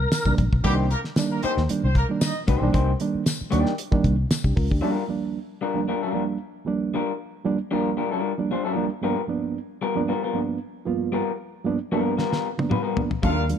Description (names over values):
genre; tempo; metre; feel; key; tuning
funk; 114 BPM; 4/4; straight; unclear; A4 = 441 Hz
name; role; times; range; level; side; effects
fingered electric bass; bass; 0.0-4.8, 13.2-13.5 s; Bb1 to Eb2; -23 LUFS; left 1 dB; none
damped 70s drum kit; drums; 0.1-4.8, 12.2-13.6 s; hi-hat, kick drum, snare drum, toms; -24 LUFS; equal; none
tambourine; percussion; 0.1-4.4 s; none; -34 LUFS; left 8 dB; none
reed electric piano; stabs; 0.2-13.6 s; Eb2 to Bb4; -26 LUFS; right 5 dB; overdrive
warm horn section; second line; 0.6-2.4, 13.2-13.4 s; G3 to F5; -30 LUFS; equal; none
electric guitar through a small old amp; accompaniment; 0.6-13.4 s; G3 to D5; -27 LUFS; left 5 dB; none
room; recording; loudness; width
light reverb; none; -22 LUFS; side -8 dB against mid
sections
0.0-4.8 A section; 4.8-13.6 B section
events
drum fill 12.2-13.2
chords
0.0 Cm7; 4.8 Ebmaj9; 9.0 G7#9